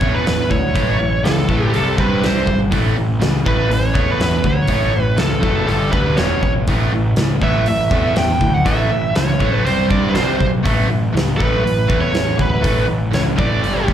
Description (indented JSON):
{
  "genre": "hard rock",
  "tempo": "121 BPM",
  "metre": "4/4",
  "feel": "straight",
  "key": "unclear",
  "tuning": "A4 = 440 Hz",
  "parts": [
    { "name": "bluesy overdriven lead guitar", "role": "melody", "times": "0.0-13.8 s", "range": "A4 to G5", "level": "-21 LUFS", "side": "right 2 dB", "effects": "distortion, slapback echo" },
    { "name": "biting overdriven guitar", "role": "riff", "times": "0.0-13.9 s", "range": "E2 to C4", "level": "-21 LUFS", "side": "equal", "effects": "slapback echo" },
    { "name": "fuzz picked electric bass", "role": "bass", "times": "0.0-13.9 s", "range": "E1 to G2", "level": "-19 LUFS", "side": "equal", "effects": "overdrive" },
    { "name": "huge arena drum kit", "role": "drums", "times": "0.0-13.9 s", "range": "hi-hat, kick drum, snare drum", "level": "-20 LUFS", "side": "equal", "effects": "none" }
  ],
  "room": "little or no reverb",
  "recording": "live gig heard through the venue's PA, club reverb",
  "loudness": "-14 LUFS",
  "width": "side -10 dB against mid",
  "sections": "0.0-13.9 A section",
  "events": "none",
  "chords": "0.0 A; 1.7 C5; 2.7 A; 5.7 G5; 6.2 E5; 6.7 A; 9.7 C5; 10.6 A",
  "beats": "0.26 | 0.75 1.24 1.74 2.23 | 2.72 3.21 3.71 4.20 | 4.70 5.19 5.68 6.18 | 6.67 7.17 7.67 8.16 | 8.66 9.15 9.65 10.15 | 10.65 11.14 11.64 12.14 | 12.63 13.13 13.63"
}